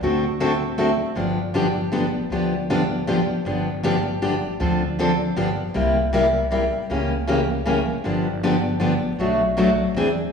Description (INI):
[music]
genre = acoustic string swing (jazz manouche)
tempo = 157 BPM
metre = 3/4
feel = swing 62% on 8ths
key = G mixolydian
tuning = A4 = 440 Hz
[part]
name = picked steel-string acoustic guitar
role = accompaniment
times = 0.0-10.1 s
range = B2 to A4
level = -20 LUFS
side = left 1 dB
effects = none
[part]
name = upright bass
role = bass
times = 0.0-10.3 s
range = G1 to E2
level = -30 LUFS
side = equal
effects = none
[sound]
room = wet recital hall reverb, RT60 1.4 s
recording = recorded in a church or concert hall, studio ambience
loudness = -19 LUFS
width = side -6 dB against mid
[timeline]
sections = 0.0-1.2 A section; 1.2-10.3 B section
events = none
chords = 0.0 D7; 1.2 G7; 4.6 Dm7; 5.4 G7; 5.8 C7; 6.9 C#dim7; 8.0 G7; 9.2 Bm7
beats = | 0.02 0.40 0.78 | 1.17 1.55 1.93 | 2.31 2.69 3.08 | 3.46 3.84 4.22 | 4.61 4.99 5.37 | 5.75 6.13 6.52 | 6.90 7.28 7.66 | 8.05 8.43 8.81 | 9.19 9.58 9.96